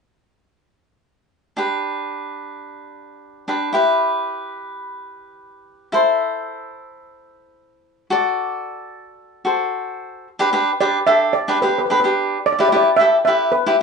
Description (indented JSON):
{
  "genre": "calypso",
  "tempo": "110 BPM",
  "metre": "4/4",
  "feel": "straight",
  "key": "G major",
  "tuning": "A4 = 441 Hz",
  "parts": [
    { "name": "cavaquinho", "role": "accompaniment", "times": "1.6-13.8 s", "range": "D4 to D5", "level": "-18 LUFS", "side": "left 1 dB", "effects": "none" },
    { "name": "steel pan", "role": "melody", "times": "10.8-13.8 s", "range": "B4 to E5", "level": "-17 LUFS", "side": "right 2 dB", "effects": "none" }
  ],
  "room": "wet studio reverb, RT60 0.6 s",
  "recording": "band playing live in one room, nothing above 10.4 kHz",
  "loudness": "-16 LUFS",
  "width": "side -5 dB against mid",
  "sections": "1.6-10.3 A section; 10.3-13.8 B section",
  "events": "none",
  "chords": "1.6 G; 3.8 Em; 5.9 Am; 8.1 D; 10.3 G; 12.5 Em"
}